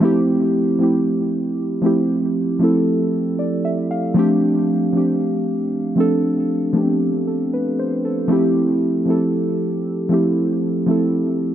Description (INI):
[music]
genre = R&B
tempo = 58 BPM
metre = 4/4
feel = straight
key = unclear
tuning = A4 = 440 Hz
[part]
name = muted felt-like synth keys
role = solo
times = 0.0-11.5 s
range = F3 to F5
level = -16 LUFS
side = equal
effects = chorus, digital delay
[sound]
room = moderate lush hall reverb, RT60 3.1 s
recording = none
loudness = -16 LUFS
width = side -10 dB against mid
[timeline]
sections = 0.0-11.5 A section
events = none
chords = 0.0 Fmaj9; 4.2 G9sus4; 8.3 Fmaj9